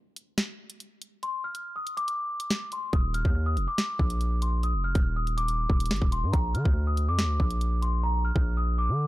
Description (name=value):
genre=hip hop, drill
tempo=141 BPM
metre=4/4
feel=half-time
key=unclear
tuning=A4 = 443 Hz
part: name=drill drum kit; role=drums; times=0.2-8.5 s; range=hi-hat, kick drum, snare drum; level=-26 LUFS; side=equal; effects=none
part: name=celesta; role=melody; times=1.2-9.1 s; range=Bb5 to F6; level=-31 LUFS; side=left 1 dB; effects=low-pass filter, ping-pong delay
part: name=distorted 808-style bass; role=bass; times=2.9-9.1 s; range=Eb1 to D3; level=-26 LUFS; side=equal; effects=distortion
room=little or no reverb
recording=dark, warm production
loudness=-25 LUFS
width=side -17 dB against mid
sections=0.0-9.1 A section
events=break 0.0-2.9; hi-hats muted 8.0-9.1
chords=0.0 N.C.; 2.9 Eb5; 6.3 Bb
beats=0.38 0.80 | 1.23 1.65 2.08 2.50 | 2.93 3.36 3.78 4.21 | 4.63 5.06 5.48 5.91 | 6.33 6.76 7.19 7.61 | 8.04 8.46 8.89